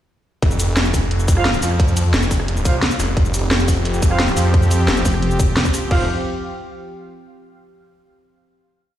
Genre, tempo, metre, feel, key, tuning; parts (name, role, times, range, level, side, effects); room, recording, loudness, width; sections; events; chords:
dark technical drum and bass; 175 BPM; 4/4; straight; A4 = 440 Hz
snarling distorted saw bass; bass; 0.4-6.1 s; F1 to F2; -18 LUFS; equal; distortion
drum and bass drum kit; drums; 0.4-6.0 s; cabasa, crash cymbal, hi-hat, rim click, snare drum; -21 LUFS; equal
electronic kick drum; drums; 0.4-6.0 s; -17 LUFS; equal
mellow brass ensemble; stabs; 1.4-6.0 s; F4 to F5; -26 LUFS; right 3 dB; dub echo
sweeping resonant pad; sustained chords; 3.2-6.1 s; F3 to G4; -24 LUFS; equal; chorus, sidechain pumping
pulsing pluck wobble bass; bass; 5.1-5.6 s; F1; -19 LUFS; equal; chorus
little or no reverb; played on a big sound system in a bare room, large studio reverb; -15 LUFS; side -12 dB against mid
0.4-5.9 drop; 5.9-7.3 final chord
drop 0.4-5.9
0.4 F5